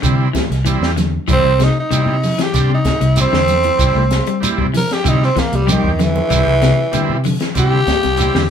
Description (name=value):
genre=afrobeat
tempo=96 BPM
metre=4/4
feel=straight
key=C major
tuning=A4 = 441 Hz
part: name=combo organ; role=accompaniment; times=0.0-8.4 s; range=G3 to G4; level=-22 LUFS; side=right 4 dB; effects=none
part: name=electric guitar at the edge of break-up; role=arpeggios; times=0.0-8.5 s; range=C3 to A3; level=-21 LUFS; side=left 7 dB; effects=none
part: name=fingered electric bass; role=bass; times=0.0-8.5 s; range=C2 to C3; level=-17 LUFS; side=equal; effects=none
part: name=compact cocktail drum kit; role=drums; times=0.0-8.5 s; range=hi-hat, kick drum, snare drum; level=-22 LUFS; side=equal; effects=none
part: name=congas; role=percussion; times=0.0-8.5 s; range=none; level=-24 LUFS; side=right 2 dB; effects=none
part: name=shekere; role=percussion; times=0.0-8.3 s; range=none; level=-23 LUFS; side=right 3 dB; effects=none
part: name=growling tenor saxophone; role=melody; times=1.3-8.5 s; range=Eb3 to Bb4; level=-17 LUFS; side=right 1 dB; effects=none
room=moderate studio reverb, RT60 0.5 s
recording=band playing live in one room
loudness=-13 LUFS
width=side -8 dB against mid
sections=0.0-8.5 A section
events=tenor saxophone solo 0.0-8.5; drum fill 5.0-6.3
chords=0.0 Cadd9